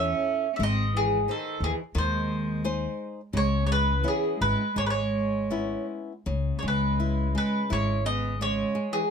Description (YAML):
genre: fado-style ballad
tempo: 77-89 BPM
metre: 4/4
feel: rubato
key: C# harmonic minor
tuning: A4 = 440 Hz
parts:
  - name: mandolin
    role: melody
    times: 0.0-9.1 s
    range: G#4 to E5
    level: -28 LUFS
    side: right 1 dB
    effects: none
  - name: rich cello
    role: second line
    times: 0.0-9.1 s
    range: D#3 to C#4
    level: -32 LUFS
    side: right 3 dB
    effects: none
  - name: flamenco guitar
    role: accompaniment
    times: 0.0-9.1 s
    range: C#3 to C#5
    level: -34 LUFS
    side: left 5 dB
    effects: none
  - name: upright bass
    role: bass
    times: 0.0-8.6 s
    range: G#1 to E2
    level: -28 LUFS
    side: left 1 dB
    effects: none
room: light reverb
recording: close, detailed microphones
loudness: -24 LUFS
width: side -6 dB against mid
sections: 0.0-6.3 A section; 6.3-9.1 B section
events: none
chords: 0.0 A; 0.6 G#; 3.3 C#m7; 6.3 C#m